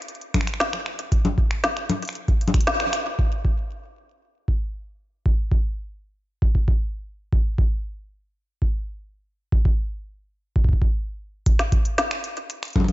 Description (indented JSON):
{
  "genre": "IDM",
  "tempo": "116 BPM",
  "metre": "4/4",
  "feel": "straight",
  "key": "none",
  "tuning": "none",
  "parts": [
    { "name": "organic electronic drum kit", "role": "drums", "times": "0.0-3.3, 11.5-12.9 s", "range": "congas, finger snaps, hi-hat, snare drum", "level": "-24 LUFS", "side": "left 1 dB", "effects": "low-pass filter on hats, low-pass filter on perc, low-pass filter on snare, digital delay" },
    { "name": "electronic kick drum", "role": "drums", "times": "0.3-12.9 s", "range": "none", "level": "-20 LUFS", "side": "equal", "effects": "overdrive" }
  ],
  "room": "light reverb",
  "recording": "nothing above 7.6 kHz",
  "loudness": "-21 LUFS",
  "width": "side -16 dB against mid",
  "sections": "0.0-3.2 A section; 3.2-11.5 B section; 11.5-12.9 C section",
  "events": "kick drops out 2.7-3.2; band accent 2.7; filter sweep on drum 3.2-11.5",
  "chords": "none",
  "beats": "0.08 0.60 | 1.12 1.64 2.15 2.67 | 3.19 3.71 4.22 4.74 | 5.26 5.77 6.29 6.81 | 7.33 7.84 8.36 8.88 | 9.39 9.91 10.43 10.95 | 11.46 11.98 12.50"
}